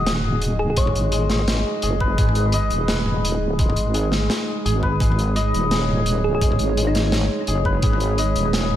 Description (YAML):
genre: half-time drum and bass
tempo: 170 BPM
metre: 4/4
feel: swing 59% on 16ths, half-time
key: G# minor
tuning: A4 = 441 Hz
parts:
  - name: dark analog pad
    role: sustained chords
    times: 0.0-8.8 s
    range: G#3 to D#5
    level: -27 LUFS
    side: right 2 dB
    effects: chorus, vintage 12-bit sampler grit, sidechain pumping
  - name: santur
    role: arpeggios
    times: 0.0-8.8 s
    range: G#3 to G#5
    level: -25 LUFS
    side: left 3 dB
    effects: ping-pong delay
  - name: deep soft wobble bass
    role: bass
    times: 0.0-8.8 s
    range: D#1 to G#1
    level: -22 LUFS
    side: equal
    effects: chorus
  - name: crunchy breakbeat drum kit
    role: drums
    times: 0.1-8.8 s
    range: hi-hat, snare drum, toms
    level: -25 LUFS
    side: equal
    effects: none
  - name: thumb-piano-like synth pluck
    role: melody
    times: 0.6-1.3, 6.2-7.2 s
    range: D#4 to C#5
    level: -28 LUFS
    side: equal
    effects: chorus, ping-pong delay
  - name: electronic kick drum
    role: drums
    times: 0.8-7.9 s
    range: none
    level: -20 LUFS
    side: equal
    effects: none
room: light reverb, small room ambience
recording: none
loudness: -18 LUFS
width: side -11 dB against mid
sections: 0.0-8.8 A section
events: none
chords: 0.0 G#5